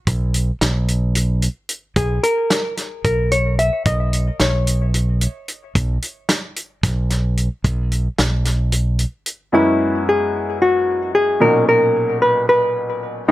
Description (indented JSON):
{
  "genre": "progressive instrumental, band music in an uneven meter",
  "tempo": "222 BPM (eighths)",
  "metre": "7/8",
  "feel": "straight",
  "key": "B major",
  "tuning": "A4 = 435 Hz",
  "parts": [
    { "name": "modern bright fingered electric bass", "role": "bass", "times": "0.1-9.0 s", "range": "B1", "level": "-18 LUFS", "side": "equal", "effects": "none" },
    { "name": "warm soul drum kit", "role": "drums", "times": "0.1-9.4 s", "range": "hi-hat, kick drum, snare drum", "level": "-20 LUFS", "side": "equal", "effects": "none" },
    { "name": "hollow-body jazz guitar", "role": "melody", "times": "2.0-5.4, 9.5-13.3 s", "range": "E4 to E5", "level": "-17 LUFS", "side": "left 1 dB", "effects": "ping-pong delay" },
    { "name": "clear baby grand piano", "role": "accompaniment", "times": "9.5-13.3 s", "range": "F#2 to E4", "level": "-20 LUFS", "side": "equal", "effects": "none" }
  ],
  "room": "light reverb",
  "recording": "none",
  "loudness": "-16 LUFS",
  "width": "side -16 dB against mid",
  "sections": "0.0-9.5 A section; 9.5-13.3 B section",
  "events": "none",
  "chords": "0.0 N.C.; 2.0 Bmaj7sus2; 5.8 N.C.; 9.5 F#7sus4; 11.4 Bmaj7"
}